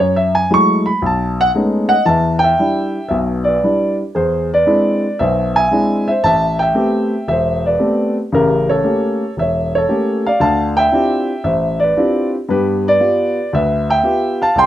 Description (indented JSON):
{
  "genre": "solo jazz",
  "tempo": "115 BPM",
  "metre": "4/4",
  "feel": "swing 69% on 8ths",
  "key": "unclear",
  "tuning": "A4 = 440 Hz",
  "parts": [
    { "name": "warm baby grand piano", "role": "solo", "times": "0.0-14.7 s", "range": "E1 to C#6", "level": "-13 LUFS", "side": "equal", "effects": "none" }
  ],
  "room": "wet studio reverb, RT60 0.6 s",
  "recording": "rough home demo mix",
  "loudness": "-13 LUFS",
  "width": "side -12 dB against mid",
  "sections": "0.0-2.1 A section; 2.1-14.7 B section",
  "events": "grand piano solo 0.0-2.1",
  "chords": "0.0 F#m9; 1.0 B13; 2.1 Em7; 4.1 E7b13; 6.2 Am9; 8.3 A7b9; 10.4 Dm11; 12.5 G7"
}